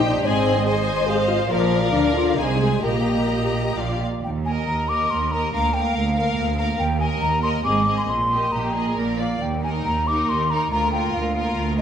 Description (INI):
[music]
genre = quick classical-period movement for symphony orchestra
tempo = 127-145 BPM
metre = 3/4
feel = rubato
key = Eb major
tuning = A4 = 440 Hz
[part]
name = clear studio violin section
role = melody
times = 0.0-11.8 s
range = Bb4 to Bb5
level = -30 LUFS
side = left 4 dB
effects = none
[part]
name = rich studio violin section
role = second line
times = 0.0-11.8 s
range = Eb4 to D5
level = -28 LUFS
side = left 1 dB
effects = none
[part]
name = warm studio viola section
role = accompaniment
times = 0.0-11.8 s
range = Bb3 to Eb5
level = -28 LUFS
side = right 1 dB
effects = none
[part]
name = mellow French horn section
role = sustained chords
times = 0.0-3.8 s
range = F3 to C5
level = -22 LUFS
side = left 3 dB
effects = none
[part]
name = warm studio cello section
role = bass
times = 0.0-11.8 s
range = D2 to D3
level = -27 LUFS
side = right 3 dB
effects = none
[part]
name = warm studio double bass section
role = bass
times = 0.0-11.8 s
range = Ab1 to Eb2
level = -27 LUFS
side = right 3 dB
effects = none
[part]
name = hollow concert flute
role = second line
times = 4.0-11.8 s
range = Eb5 to D6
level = -24 LUFS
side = left 1 dB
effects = none
[sound]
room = wet concert hall reverb, RT60 1.9 s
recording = none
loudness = -19 LUFS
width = side -8 dB against mid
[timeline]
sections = 0.0-4.2 A section; 4.2-11.8 B section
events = none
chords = 0.2 Fm7/Ab; 1.5 Bb; 2.4 Ab/C; 2.8 Eb/Bb; 3.8 Bb; 4.2 Eb5; 5.5 Bb/D; 6.8 Eb5; 7.6 Ab; 8.1 Eb/Bb; 9.4 Eb5; 10.7 Bb/D